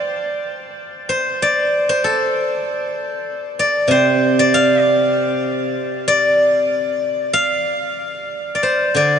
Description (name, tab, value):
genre	chinese traditional, Chinese solo plucked strings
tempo	95 BPM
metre	4/4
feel	rubato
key	D yu mode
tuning	A4 = 440 Hz
part	steel-string zither	solo	0.0-9.2 s	C3 to D6	-15 LUFS	equal	none
room	wet huge ambient reverb, RT60 7.6 s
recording	in a vast, echoing space, nothing above 10.5 kHz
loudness	-15 LUFS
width	side -8 dB against mid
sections	0.0-9.2 A section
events	none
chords	none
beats	| 0.10 0.75 1.39 2.03 | 2.66 3.28 3.89 4.51 | 5.13 5.76 6.39 7.02 | 7.66 8.30 8.96